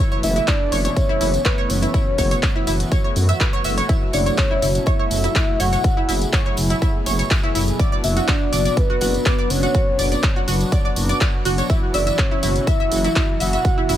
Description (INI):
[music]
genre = progressive house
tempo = 123 BPM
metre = 4/4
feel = straight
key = F# minor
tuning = A4 = 436 Hz
[part]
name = warm analog pad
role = sustained chords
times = 0.0-14.0 s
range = B2 to G#4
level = -26 LUFS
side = equal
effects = chorus, sidechain pumping
[part]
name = analog pluck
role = arpeggios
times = 0.0-13.9 s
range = E4 to E5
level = -26 LUFS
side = right 1 dB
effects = wide subtle chorus, sidechain pumping, dub echo
[part]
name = soft octave-layered synth lead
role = melody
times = 0.2-14.0 s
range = B4 to F#5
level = -24 LUFS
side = equal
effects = chorus, phaser, dub echo
[part]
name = dark detuned saw bass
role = bass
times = 0.2-14.0 s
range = F#1 to F#2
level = -21 LUFS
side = equal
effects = sidechain pumping
[part]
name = big-room dance drum kit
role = drums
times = 0.2-14.0 s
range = handclaps, hi-hat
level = -26 LUFS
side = left 1 dB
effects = sidechain pumping on hats
[part]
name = tambourine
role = percussion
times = 0.2-14.0 s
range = none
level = -32 LUFS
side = right 3 dB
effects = none
[part]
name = electronic kick drum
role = drums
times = 0.5-13.8 s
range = none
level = -19 LUFS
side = equal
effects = none
[sound]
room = little or no reverb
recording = none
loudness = -16 LUFS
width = side -11 dB against mid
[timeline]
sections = 0.0-14.0 A section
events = none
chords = 0.0 Aadd9/F#; 3.9 F#m7; 7.8 Bmadd9/F#; 11.7 Esus2/F#